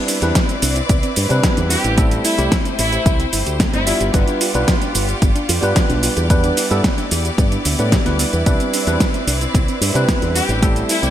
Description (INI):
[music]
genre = nu-disco, nu disco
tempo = 111 BPM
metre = 4/4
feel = straight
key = C major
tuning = A4 = 439 Hz
[part]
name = tine electric piano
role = accompaniment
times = 0.0-11.1 s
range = G3 to E5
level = -22 LUFS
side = right 1 dB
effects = ping-pong delay
[part]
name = clear symphonic string section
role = sustained chords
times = 0.0-11.1 s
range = A3 to D5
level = -25 LUFS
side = left 1 dB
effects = sidechain pumping
[part]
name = soft round pluck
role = arpeggios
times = 0.0-11.1 s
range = A3 to B4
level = -27 LUFS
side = right 3 dB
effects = chorus, sidechain pumping, ping-pong delay
[part]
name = pop drum kit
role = drums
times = 0.1-11.1 s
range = cabasa, hi-hat, snare drum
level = -21 LUFS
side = right 1 dB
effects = overdrive, gated reverb
[part]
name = fingered electric bass with an envelope filter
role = bass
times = 0.2-11.1 s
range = G1 to C3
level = -20 LUFS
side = equal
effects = none
[part]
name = electronic kick drum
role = drums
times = 0.4-10.7 s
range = none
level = -17 LUFS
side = equal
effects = overdrive
[part]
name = warm chamber violin section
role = melody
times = 1.7-3.9, 10.4-11.1 s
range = E4 to G4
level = -22 LUFS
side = left 2 dB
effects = ping-pong delay
[sound]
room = light reverb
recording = bright 1980s-style digital production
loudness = -14 LUFS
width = side -11 dB against mid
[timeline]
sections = 0.0-11.1 A section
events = none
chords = 0.0 Cmaj9; 2.0 Am7; 3.9 G7; 6.3 Em7; 8.5 Cmaj9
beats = 0.35 0.90 1.44 | 1.98 2.52 3.06 3.60 | 4.14 4.68 5.22 5.76 | 6.30 6.84 7.38 7.92 | 8.46 9.00 9.54 10.08 | 10.62